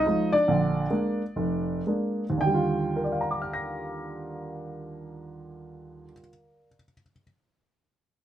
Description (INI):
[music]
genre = solo jazz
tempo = 108-149 BPM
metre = 4/4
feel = swing 65% on 8ths, rubato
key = Eb major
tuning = A4 = 444 Hz
[part]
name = warm upright piano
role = solo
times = 0.0-7.2 s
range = F1 to Bb6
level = -25 LUFS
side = right 1 dB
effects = none
[sound]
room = light reverb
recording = none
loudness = -25 LUFS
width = side -11 dB against mid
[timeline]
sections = 0.0-2.4 A section; 2.4-6.8 B section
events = slowing down 0.0-2.4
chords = 0.5 Bb7; 2.4 Ebmaj9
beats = 0.05 | 0.46 0.90 1.36 1.86 | 2.40 2.95 3.50 4.04 | 4.58 5.12 5.66 6.21